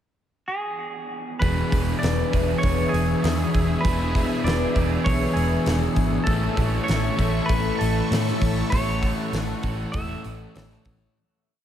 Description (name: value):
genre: rock, shoegaze and dream pop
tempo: 99 BPM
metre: 4/4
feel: straight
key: E mixolydian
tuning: A4 = 440 Hz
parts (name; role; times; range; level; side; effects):
- clean electric guitar; melody; 0.5-10.8 s; G#4 to E5; -29 LUFS; right 1 dB; lush chorus, tape echo
- sweeping resonant pad; sustained chords; 1.4-11.1 s; G#4 to C#6; -33 LUFS; right 2 dB; chorus
- picked twelve-string acoustic guitar; arpeggios; 1.4-11.2 s; G#4 to D5; -33 LUFS; left 5 dB; wide subtle chorus, tape echo
- crunchy overdriven guitar; riff; 1.4-11.2 s; A2 to A4; -30 LUFS; right 7 dB; reverse reverb
- thick fuzz guitar; riff; 1.4-11.2 s; E2 to A3; -27 LUFS; left 5 dB; distortion, wide subtle chorus
- vintage muted fingered electric bass; bass; 1.4-11.1 s; E1 to A2; -26 LUFS; equal; none
- huge arena drum kit; drums; 1.4-11.0 s; hi-hat, kick drum, snare drum; -26 LUFS; equal; none
room: wet cathedral reverb, RT60 6.9 s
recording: dreamy mix soaked in reverb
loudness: -20 LUFS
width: side -10 dB against mid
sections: 0.0-1.4 pickup bar; 1.4-11.2 verse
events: fade-out 8.7-11.2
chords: 0.0 N.C.; 1.4 E7; 6.3 A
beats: 0.20 0.81 | 1.42 2.02 2.63 3.24 | 3.84 4.45 5.06 5.67 | 6.28 6.88 7.50 8.11 | 8.72 9.33 9.94 10.55